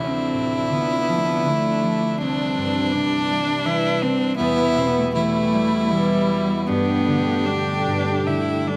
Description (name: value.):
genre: celtic folk, Celtic slow air.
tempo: 74-85 BPM.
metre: 3/4.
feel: rubato.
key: D dorian.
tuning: A4 = 440 Hz.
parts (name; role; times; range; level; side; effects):
clear cello; melody; 0.0-8.8 s; G3 to E4; -25 LUFS; equal; none.
rich fiddle; second line; 0.0-8.7 s; D4 to E4; -27 LUFS; equal; slapback echo.
concert harp; accompaniment; 0.0-8.8 s; C2 to A5; -26 LUFS; equal; none.
dark studio string section; sustained chords; 0.0-8.8 s; B2 to G4; -31 LUFS; equal; none.
room: light reverb.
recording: recorded outdoors, with no room sound.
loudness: -21 LUFS.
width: mono.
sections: 0.0-8.8 A section.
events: none.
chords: 0.0 Dm7; 2.2 Cadd9; 4.4 Em; 6.7 Gadd9.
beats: 0.71 1.45 | 2.19 2.91 3.63 | 4.38 5.14 5.92 | 6.68 7.46 8.27.